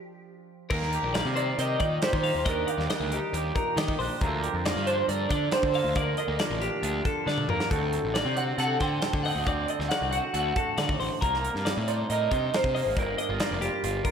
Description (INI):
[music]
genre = math rock and midwest emo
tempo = 137 BPM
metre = 4/4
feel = straight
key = unclear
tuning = A4 = 440 Hz
[part]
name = clean electric guitar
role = accompaniment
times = 0.0-14.1 s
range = G2 to Bb4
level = -33 LUFS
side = right 6 dB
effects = wide subtle chorus
[part]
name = twelve-string electric guitar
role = arpeggios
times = 0.7-14.1 s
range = F#4 to F5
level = -31 LUFS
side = left 5 dB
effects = none
[part]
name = fuzz picked electric bass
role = bass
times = 0.7-14.0 s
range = F1 to Eb3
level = -31 LUFS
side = equal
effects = overdrive
[part]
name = modern studio drum kit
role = drums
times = 0.7-14.1 s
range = crash cymbal, hi-hat, kick drum, snare drum, toms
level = -31 LUFS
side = equal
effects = none
[part]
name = electric guitar through a small old amp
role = melody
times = 1.4-14.1 s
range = Bb4 to G5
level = -30 LUFS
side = right 2 dB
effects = ensemble chorus, analog delay
[sound]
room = moderate lush hall reverb, RT60 1.6 s, studio reverb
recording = dreamy mix soaked in reverb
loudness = -24 LUFS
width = side -7 dB against mid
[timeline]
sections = 0.7-14.1 A section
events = stop 0.0-0.7; drum fill 7.3-7.7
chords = 0.0 Dm/F; 0.7 Ebmaj7; 4.2 Bbmaj7/D; 7.7 D7; 11.2 Cm7; 13.0 Gm7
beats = 0.26 | 0.70 1.14 1.58 2.02 | 2.46 2.90 3.33 3.77 | 4.21 4.65 5.09 5.52 | 5.96 6.40 6.84 7.28 | 7.71 8.15 8.59 9.03 | 9.47 9.90 10.34 10.78 | 11.22 11.65 12.09 12.52 | 12.96 13.39 13.83